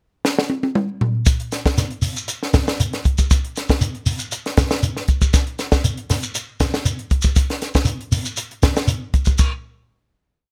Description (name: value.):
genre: afrobeat.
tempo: 118 BPM.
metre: 4/4.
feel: straight.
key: none.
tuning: none.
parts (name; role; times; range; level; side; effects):
compact cocktail drum kit; drums; 0.2-9.5 s; crash cymbal, hi-hat, kick drum, snare drum, toms; -20 LUFS; equal; none.
shekere; percussion; 1.3-9.5 s; none; -25 LUFS; equal; none.
room: little or no reverb.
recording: none.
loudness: -20 LUFS.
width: mono.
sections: 0.0-1.3 pickup bar; 1.3-9.4 groove; 9.4-10.5 final hit.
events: drum fill 0.2-1.3.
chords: none.